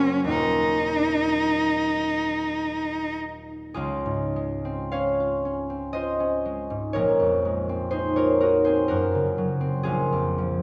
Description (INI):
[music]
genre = classical, impressionist duo for cello and harp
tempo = 49-64 BPM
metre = 3/4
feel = rubato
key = Db major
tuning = A4 = 441 Hz
[part]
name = warm cello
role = melody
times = 0.0-3.2 s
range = Db4 to Eb4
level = -25 LUFS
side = equal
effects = none
[part]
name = concert harp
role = accompaniment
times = 0.0-10.6 s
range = Eb1 to F5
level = -26 LUFS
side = equal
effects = none
[sound]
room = wet concert hall reverb, RT60 2.0 s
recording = none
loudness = -24 LUFS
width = mono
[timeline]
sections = 0.0-3.8 A section; 3.8-10.6 B section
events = none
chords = 0.3 Ebm9; 3.8 Dbmaj7; 7.0 Bbm11; 8.9 Gbmaj7#11; 9.9 Bbm9